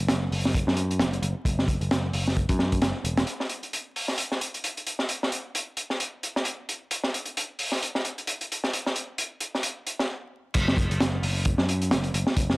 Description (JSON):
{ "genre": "breakbeat, breaks", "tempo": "132 BPM", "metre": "4/4", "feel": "swing 57% on 16ths", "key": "unclear", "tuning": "A4 = 440 Hz", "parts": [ { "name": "picked electric bass", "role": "bass", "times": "0.0-3.2, 10.6-12.6 s", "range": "E1 to F#2", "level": "-26 LUFS", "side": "equal", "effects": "none" }, { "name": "crunchy breakbeat drum kit", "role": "drums", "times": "0.1-12.6 s", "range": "crash cymbal, hi-hat, kick drum, snare drum", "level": "-26 LUFS", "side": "equal", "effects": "high-pass filter on kick, high-pass filter on hats, high-pass filter on cymbals, high-pass filter on snare, high-pass filter on room" } ], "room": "little or no reverb", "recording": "dry, gritty hardware recording, vinyl crackle", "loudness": "-25 LUFS", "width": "side -23 dB against mid", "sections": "0.0-3.3 A section; 3.3-10.5 B section; 10.5-12.6 C section", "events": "stop 10.1-10.5; drop 10.5-12.6", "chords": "none" }